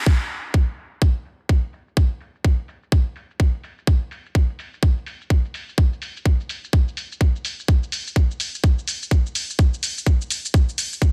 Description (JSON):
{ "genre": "house", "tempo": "126 BPM", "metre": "4/4", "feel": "swing 60% on 16ths", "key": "none", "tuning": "none", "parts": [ { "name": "electronic kick drum", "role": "drums", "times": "0.1-11.1 s", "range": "none", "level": "-18 LUFS", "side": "equal", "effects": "overdrive, studio reverb" }, { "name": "electronic shaker and hi-hat", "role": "drums", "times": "0.1-11.1 s", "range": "none", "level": "-29 LUFS", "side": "equal", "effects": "low-pass filter on hats, studio reverb, low-pass filter on perc, low-pass filter on snare" } ], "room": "digital ambience", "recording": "dense, heavily limited modern master", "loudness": "-22 LUFS", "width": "mono", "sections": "0.1-11.1 A section", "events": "band accent 0.0; filter sweep on drum 0.1-11.1", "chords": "none", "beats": "| 0.07 0.54 1.02 1.49 | 1.97 2.45 2.92 3.40 | 3.87 4.35 4.83 5.30 | 5.78 6.25 6.73 7.21 | 7.68 8.16 8.64 9.11 | 9.59 10.06 10.54 11.02" }